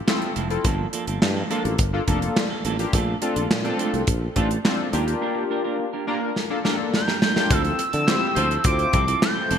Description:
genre	early-eighties boogie funk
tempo	105 BPM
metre	4/4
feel	straight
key	D minor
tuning	A4 = 440 Hz
part	chorused polysynth	accompaniment	0.1-9.5 s	Bb3 to C5	-27 LUFS	left 3 dB	none
part	semi-hollow electric guitar	riff	0.1-9.6 s	F3 to Bb4	-29 LUFS	right 5 dB	wide subtle chorus
part	modern studio drum kit	drums	0.1-9.6 s	handclaps, hi-hat, kick drum, snare drum	-23 LUFS	right 1 dB	gated reverb
part	sustaining fretless electric bass	bass	0.4-9.6 s	F1 to D3	-25 LUFS	equal	none
part	expressive synth lead	melody	6.9-9.6 s	D6 to G6	-23 LUFS	equal	chorus
part	mellow horn section	second line	8.1-8.5 s	A3 to C5	-31 LUFS	left 2 dB	none
room	moderate plate reverb, RT60 3.1 s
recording	bright 1980s-style digital production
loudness	-20 LUFS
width	side -8 dB against mid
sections	0.0-7.5 A section; 7.5-9.6 B section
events	drum fill 6.4-7.5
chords	0.0 Dm9 (rootless); 0.6 Gm9; 2.9 Bbmaj7; 4.9 Ebmaj7 (rootless); 7.5 Dm9

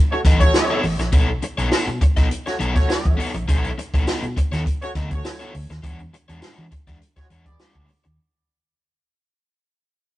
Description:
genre	funk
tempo	102 BPM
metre	4/4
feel	straight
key	B mixolydian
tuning	A4 = 439 Hz
part	warm horn section	second line	0.1-7.9 s	G#3 to D5	-25 LUFS	equal	analog delay
part	crunchy overdriven guitar	accompaniment	0.1-8.1 s	G#3 to D#5	-27 LUFS	left 2 dB	none
part	vintage muted fingered electric bass	bass	0.2-8.2 s	A1 to E3	-27 LUFS	equal	none
part	compact cocktail drum kit	drums	0.2-8.2 s	hi-hat, kick drum, snare drum	-18 LUFS	equal	none
part	tambourine	percussion	0.5-7.7 s	none	-41 LUFS	equal	none
room	light reverb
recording	rough rehearsal-room recording, warm saturation, nothing above 10.3 kHz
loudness	-18 LUFS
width	side -16 dB against mid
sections	0.0-8.2 A section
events	fade-out 0.0-8.2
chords	0.0 B9; 5.8 E13

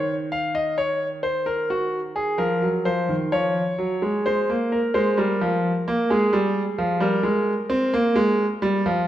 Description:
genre	classical, baroque-style two-part invention for grand piano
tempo	65 BPM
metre	4/4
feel	straight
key	Bb minor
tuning	A4 = 440 Hz
part	clear concert grand piano	solo	0.0-9.1 s	Eb3 to F5	-20 LUFS	equal	none
room	wet recital hall reverb, RT60 1.7 s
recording	dark, warm production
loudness	-20 LUFS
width	side -12 dB against mid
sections	0.0-9.1 A section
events	none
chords	0.0 Db; 0.5 Ebm; 2.4 Bbm; 4.2 Fm; 7.9 Bb5

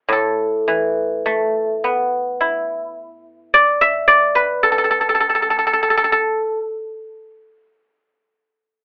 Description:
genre	chinese traditional, Chinese solo plucked strings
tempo	52-57 BPM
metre	4/4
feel	rubato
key	unclear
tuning	A4 = 440 Hz
part	guzheng	solo	0.1-8.3 s	A2 to E5	-17 LUFS	equal	none
room	light reverb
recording	telephone sound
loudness	-17 LUFS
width	mono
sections	0.1-8.8 A section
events	none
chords	none

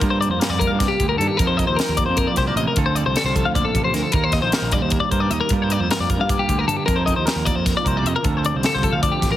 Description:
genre	math rock and midwest emo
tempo	306 BPM (eighths)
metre	7/8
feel	straight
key	G minor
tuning	A4 = 444 Hz
part	clean electric guitar	accompaniment	0.0-9.4 s	G2 to Bb4	-25 LUFS	right 8 dB	vibrato effect
part	fuzz fingered electric bass	bass	0.0-9.4 s	A1 to G2	-23 LUFS	equal	overdrive
part	crisp fusion drum kit	drums	0.0-9.3 s	hi-hat, kick drum, snare drum	-23 LUFS	equal	none
part	twelve-string electric guitar	arpeggios	0.1-9.4 s	G4 to F5	-21 LUFS	left 5 dB	spring reverb
room	light reverb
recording	heavily compressed radio sound, multiband compression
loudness	-17 LUFS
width	side -12 dB against mid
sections	0.0-9.4 A section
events	none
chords	0.0 Gm7; 1.4 F7sus4; 2.8 Dm7; 4.1 Cm7; 5.5 Gm7; 6.9 F7sus4; 8.2 Dm7

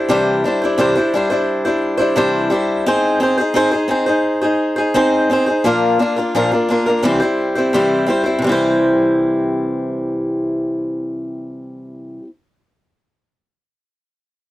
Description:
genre	rock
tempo	86 BPM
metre	4/4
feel	straight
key	C major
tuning	A4 = 440 Hz
part	picked swing-style acoustic guitar	solo	0.0-12.3 s	Bb2 to C5	-15 LUFS	equal	none
room	light reverb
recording	dry, close 1970s-style studio recording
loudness	-14 LUFS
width	side -15 dB against mid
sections	0.0-8.4 A section; 8.4-11.2 B section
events	none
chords	0.0 Cadd9; 2.9 Ab/C; 5.7 Bb; 7.0 C

